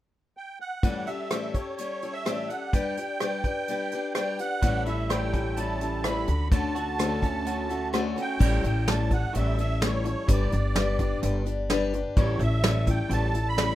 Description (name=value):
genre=folk rock and heartland rock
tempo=127 BPM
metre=4/4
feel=straight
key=A mixolydian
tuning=A4 = 440 Hz
part: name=musette accordion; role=melody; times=0.4-13.7 s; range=C#5 to B5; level=-32 LUFS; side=right 3 dB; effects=slapback echo
part: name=picked steel-string acoustic guitar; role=accompaniment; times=0.8-13.8 s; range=A2 to B4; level=-30 LUFS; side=left 4 dB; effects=none
part: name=soft brush drum kit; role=drums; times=0.8-13.7 s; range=crash cymbal, hi-hat, kick drum, rim click, snare drum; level=-26 LUFS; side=equal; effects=none
part: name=electric guitar through a small old amp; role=riff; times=4.6-13.8 s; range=G2 to F#4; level=-34 LUFS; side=right 2 dB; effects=analog chorus
part: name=upright bass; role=bass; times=4.6-13.7 s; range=G1 to D2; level=-27 LUFS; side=equal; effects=none
room=light reverb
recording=rough home demo mix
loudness=-24 LUFS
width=side -14 dB against mid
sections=0.8-8.4 A section; 8.4-13.8 B section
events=none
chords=0.0 N.C.; 0.8 A7; 2.7 G; 4.6 A7; 6.3 Dmaj7; 8.4 A7; 10.3 G; 12.2 A7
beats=0.36 | 0.83 1.31 1.78 2.26 | 2.73 3.20 3.68 4.15 | 4.62 5.10 5.57 6.04 | 6.51 6.99 7.46 7.93 | 8.40 8.88 9.35 9.82 | 10.29 10.76 11.23 11.70 | 12.18 12.65 13.12 13.59